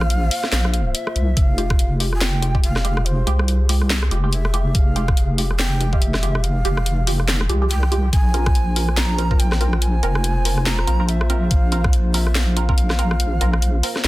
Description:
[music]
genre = deep dubstep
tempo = 142 BPM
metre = 4/4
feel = swing 59% on 16ths, half-time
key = F harmonic minor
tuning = A4 = 440 Hz
[part]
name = breathy long shakuhachi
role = melody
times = 0.0-14.1 s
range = C5 to Bb5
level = -28 LUFS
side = right 1 dB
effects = dub echo
[part]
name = dark analog pad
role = sustained chords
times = 0.0-14.1 s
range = E3 to C5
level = -32 LUFS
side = left 2 dB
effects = chorus
[part]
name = deep soft wobble bass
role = bass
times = 0.0-14.1 s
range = F1 to C2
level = -19 LUFS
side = equal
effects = chorus
[part]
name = garage drum kit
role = drums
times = 0.0-14.1 s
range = handclaps, hi-hat, rim click, snare drum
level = -24 LUFS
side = left 1 dB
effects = soft clipping on snare
[part]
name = electronic kick drum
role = drums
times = 1.4-12.8 s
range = none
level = -17 LUFS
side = equal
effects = none
[part]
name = filtered dub chord stab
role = stabs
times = 1.6-14.0 s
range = Ab3 to Bb4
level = -28 LUFS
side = right 2 dB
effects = phaser, lush chorus, dub echo
[sound]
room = little or no reverb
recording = dense, heavily limited modern master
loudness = -16 LUFS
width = side -18 dB against mid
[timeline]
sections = 0.0-14.1 A section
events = none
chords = 0.0 Bbsus2; 1.4 Fmadd9; 8.1 Bbsus2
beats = 0.10 0.52 0.94 | 1.37 1.79 2.21 2.63 | 3.06 3.48 3.90 4.33 | 4.75 5.17 5.59 6.01 | 6.44 6.86 7.28 7.71 | 8.13 8.55 8.97 9.39 | 9.82 10.24 10.66 11.09 | 11.51 11.93 12.35 12.78 | 13.20 13.62 14.04

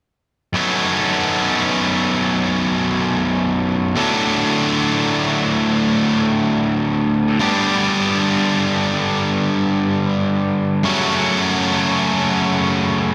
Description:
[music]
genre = rock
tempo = free time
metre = none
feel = none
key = B minor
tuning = A4 = 440 Hz
[part]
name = overdriven electric guitar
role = solo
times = 0.5-13.1 s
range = B1 to G4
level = -18 LUFS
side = equal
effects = none
[sound]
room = wet lush hall reverb, RT60 2.5 s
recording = big arena sound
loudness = -18 LUFS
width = mono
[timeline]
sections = 0.5-13.1 A section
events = none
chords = 0.5 Bsus2; 4.0 D; 7.4 G; 10.8 F#m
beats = free time

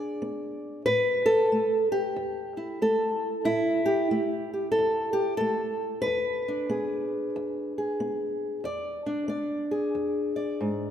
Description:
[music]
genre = acoustic country blues, solo or duo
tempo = 92 BPM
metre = 4/4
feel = swing 62% on 8ths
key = E mixolydian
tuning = A4 = 442 Hz
[part]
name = fingerpicked old ladder-braced acoustic guitar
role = solo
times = 0.0-10.9 s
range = E2 to D5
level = -25 LUFS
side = equal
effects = none
[sound]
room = wet concert hall reverb, RT60 2.1 s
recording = recorded in a church or concert hall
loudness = -25 LUFS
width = side -9 dB against mid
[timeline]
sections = 0.0-10.9 A section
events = none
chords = 0.0 E7; 0.9 A5; 6.0 E7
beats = 0.21 | 0.86 1.51 2.15 2.80 | 3.45 4.10 4.75 5.39 | 6.04 6.69 7.34 7.99 | 8.64 9.29 9.94 10.59

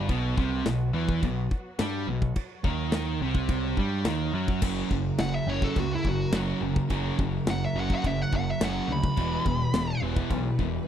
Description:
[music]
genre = heavy metal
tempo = 106 BPM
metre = 4/4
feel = straight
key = unclear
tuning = A4 = 440 Hz
[part]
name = clear symphonic string section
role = sustained chords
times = 0.0-10.9 s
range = C#3 to C#5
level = -42 LUFS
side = left 1 dB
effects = none
[part]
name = scooped high-gain guitar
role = riff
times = 0.0-10.9 s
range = E2 to G3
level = -32 LUFS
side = left 10 dB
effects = distortion
[part]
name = sludgy distorted guitar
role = riff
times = 0.0-10.9 s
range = E2 to G3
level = -30 LUFS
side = right 10 dB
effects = overdrive
[part]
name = growling picked electric bass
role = bass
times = 0.0-10.8 s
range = E1 to G2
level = -32 LUFS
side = equal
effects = overdrive
[part]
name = big rock drum kit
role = drums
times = 0.1-10.7 s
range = china cymbal, crash cymbal, kick drum, snare drum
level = -29 LUFS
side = left 1 dB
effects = none
[part]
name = high-gain lead guitar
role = melody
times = 5.2-10.0 s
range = E4 to B5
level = -32 LUFS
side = equal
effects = distortion, tape echo
[sound]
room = little or no reverb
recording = dry, close 1970s-style studio recording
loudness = -25 LUFS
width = side -9 dB against mid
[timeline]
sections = 0.0-4.6 A section; 4.6-10.9 B section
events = lead electric guitar solo 4.6-10.9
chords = 0.1 B5; 4.6 F#; 9.2 Em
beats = | 0.09 0.65 1.22 1.79 | 2.36 2.92 3.49 4.06 | 4.63 5.20 5.77 6.33 | 6.90 7.47 8.04 8.61 | 9.18 9.74 10.31

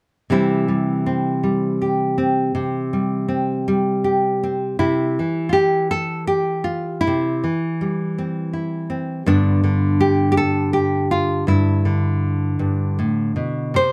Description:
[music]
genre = folk, solo fingerstyle acoustic guitar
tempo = 54 BPM (dotted quarters)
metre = 6/8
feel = rubato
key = C major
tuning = A4 = 440 Hz
[part]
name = nylon-string guitar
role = solo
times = 0.3-13.9 s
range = G2 to C5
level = -20 LUFS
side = equal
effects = none
[sound]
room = moderate studio reverb, RT60 0.8 s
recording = none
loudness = -20 LUFS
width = mono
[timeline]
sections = 0.3-4.8 A section; 4.8-13.9 B section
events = none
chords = 0.3 C; 9.3 Gadd9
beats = | 0.30 1.44 | 2.55 3.66 | 4.80 5.94 | 7.06 8.16 | 9.27 10.37 | 11.47 12.60 | 13.75

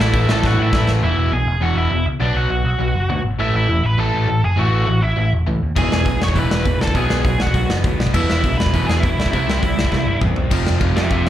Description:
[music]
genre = punk rock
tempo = 202 BPM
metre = 4/4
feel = straight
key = unclear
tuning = A4 = 439 Hz
[part]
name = biting lead guitar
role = melody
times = 0.0-11.3 s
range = D4 to C#6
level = -22 LUFS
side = equal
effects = overdrive
[part]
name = distorted electric guitar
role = riff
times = 0.0-11.3 s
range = E2 to C4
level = -26 LUFS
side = left 9 dB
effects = overdrive, slapback echo
[part]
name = distorted electric guitar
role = riff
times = 0.0-1.0, 5.8-11.3 s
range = E2 to C4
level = -26 LUFS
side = equal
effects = distortion, slapback echo
[part]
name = overdriven semi-hollow guitar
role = riff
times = 0.0-11.3 s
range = E2 to C4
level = -25 LUFS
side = right 10 dB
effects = none
[part]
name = overdriven picked electric bass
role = bass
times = 0.0-11.3 s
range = E1 to A2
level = -19 LUFS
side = equal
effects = none
[part]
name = big rock drum kit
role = drums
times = 0.0-0.9, 5.8-11.3 s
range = crash cymbal, hi-hat, kick drum, ride cymbal, snare drum, toms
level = -20 LUFS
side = equal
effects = none
[sound]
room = little or no reverb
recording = live gig heard through the venue's PA, club reverb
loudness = -15 LUFS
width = side -12 dB against mid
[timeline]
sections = 0.0-1.0 A section; 1.0-10.5 B section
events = drum fill 0.4-1.0, 9.9-10.5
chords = 0.0 A5; 1.0 E; 2.2 Bm; 3.4 A5; 5.8 E; 7.0 B5; 8.1 E; 9.3 C; 10.5 F5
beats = 0.13 0.43 0.72 | 1.02 1.32 1.61 1.91 | 2.21 2.50 2.80 3.10 | 3.39 3.69 3.99 4.28 | 4.58 4.88 5.17 5.47 | 5.77 6.07 6.36 6.66 | 6.96 7.25 7.55 7.84 | 8.14 8.44 8.73 9.03 | 9.33 9.63 9.92 10.22 | 10.52 10.81 11.11

